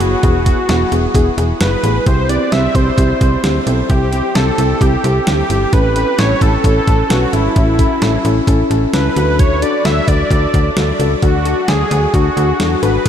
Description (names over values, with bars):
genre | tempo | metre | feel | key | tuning
synth-pop | 131 BPM | 4/4 | straight | unclear | A4 = 440 Hz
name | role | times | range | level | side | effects
wide unison lead | melody | 0.0-13.1 s | E4 to E5 | -17 LUFS | equal | ping-pong delay
muted felt-like synth keys | accompaniment | 0.0-13.1 s | B3 to B4 | -18 LUFS | left 2 dB | chorus
slap-like FM bass | bass | 0.0-13.1 s | E1 to E2 | -17 LUFS | equal | none
clean 12-bit digital drum machine | drums | 0.0-13.1 s | crash cymbal, hi-hat, kick drum, snare drum | -17 LUFS | equal | none
room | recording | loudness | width
moderate huge ambient reverb, RT60 7.6 s | dreamy mix soaked in reverb | -11 LUFS | side -9 dB against mid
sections
0.0-13.1 A section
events
none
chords
0.0 Eadd9; 2.1 C; 5.7 A; 9.2 D